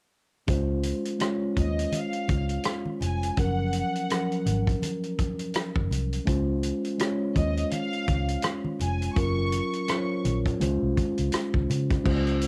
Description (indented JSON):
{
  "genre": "lush 1970s-style soul",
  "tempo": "83 BPM",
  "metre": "4/4",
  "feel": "swing 58% on 16ths",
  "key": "Db major",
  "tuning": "A4 = 440 Hz",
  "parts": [
    { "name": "mellow tine electric piano", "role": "accompaniment", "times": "0.5-12.5 s", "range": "F3 to Db5", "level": "-31 LUFS", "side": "equal", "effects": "plate reverb" },
    { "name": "vintage muted fingered electric bass", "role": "bass", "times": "0.5-12.5 s", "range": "F1 to Db3", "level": "-30 LUFS", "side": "equal", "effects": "tube saturation" },
    { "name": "warm soul drum kit", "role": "drums", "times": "0.5-12.5 s", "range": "crash cymbal, hi-hat, kick drum, rim click", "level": "-32 LUFS", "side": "equal", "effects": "cassette tape" },
    { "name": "congas", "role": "percussion", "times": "0.8-12.2 s", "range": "none", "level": "-38 LUFS", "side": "equal", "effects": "none" },
    { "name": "warm studio violin section", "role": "melody", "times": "1.6-10.3 s", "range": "Eb5 to Db6", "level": "-36 LUFS", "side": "equal", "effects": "plate reverb" }
  ],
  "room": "moderate booth ambience, RT60 0.2 s",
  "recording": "home recording on cassette",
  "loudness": "-27 LUFS",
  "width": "mono",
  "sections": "0.5-12.0 A section",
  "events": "none",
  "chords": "0.5 Dbmaj7; 3.4 Gbmaj7; 6.3 Dbmaj7; 9.2 Gbmaj7; 10.6 Dbmaj7"
}